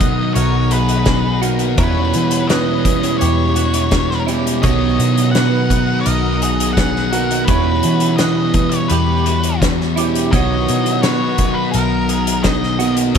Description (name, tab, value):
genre	rock, shoegaze and dream pop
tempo	84 BPM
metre	4/4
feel	straight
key	B major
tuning	A4 = 440 Hz
part	octave-fuzz lead guitar	melody	0.0-13.2 s	A#4 to F#5	-22 LUFS	left 1 dB	distortion, digital delay
part	string machine, cellos	sustained chords	0.0-13.1 s	C#5 to D#6	-29 LUFS	right 1 dB	ensemble chorus
part	picked twelve-string acoustic guitar	arpeggios	0.0-13.2 s	F#4 to C#5	-27 LUFS	right 2 dB	analog chorus, digital delay
part	electric guitar through a small old amp	riff	0.0-13.2 s	E2 to F#4	-20 LUFS	right 12 dB	reverse reverb
part	thick fuzz guitar	riff	0.0-13.2 s	E2 to B3	-20 LUFS	left 9 dB	distortion, lush chorus
part	vintage muted picked electric bass	bass	0.0-13.2 s	B1 to E3	-21 LUFS	equal	none
part	loose indie drum kit	drums	0.0-13.2 s	hi-hat, kick drum, snare drum	-20 LUFS	equal	none
room	moderate studio reverb, RT60 0.6 s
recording	none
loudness	-13 LUFS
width	side -7 dB against mid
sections	0.0-13.2 A section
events	none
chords	0.0 Bmaj7; 1.8 Em6; 4.6 Bmaj7; 7.5 Em6; 10.3 Bmaj7